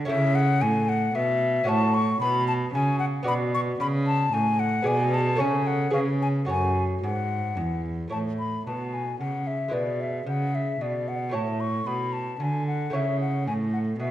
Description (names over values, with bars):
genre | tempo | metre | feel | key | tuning
classical, baroque-style sonata movement with continuo | 113 BPM | 3/4 | straight | F# minor, A major from 8.1 s | A4 = 442 Hz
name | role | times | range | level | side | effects
lute | accompaniment | 0.0-14.1 s | E2 to D5 | -31 LUFS | right 1 dB | none
rich cello | bass | 0.0-14.1 s | E2 to D3 | -26 LUFS | right 1 dB | none
mellow hollow silver concert flute | melody | 0.1-14.1 s | D5 to C#6 | -27 LUFS | left 3 dB | none
room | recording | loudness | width
wet recital hall reverb, RT60 1.3 s | dark, warm production | -23 LUFS | side -12 dB against mid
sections
0.0-8.1 A section; 8.1-14.1 A section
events
none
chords
0.0 A; 1.7 F#m/A; 3.3 Bm; 4.9 G#dim/B; 5.4 F#m/C#; 5.9 C#7(no3); 6.5 F#m; 8.1 A; 9.7 E/B; 11.3 A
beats
| 0.09 0.62 1.15 | 1.68 2.21 2.74 | 3.27 3.80 4.33 | 4.86 5.40 5.94 | 6.49 7.03 7.58 | 8.13 8.67 9.21 | 9.74 10.27 10.81 | 11.34 11.87 12.40 | 12.93 13.46 13.99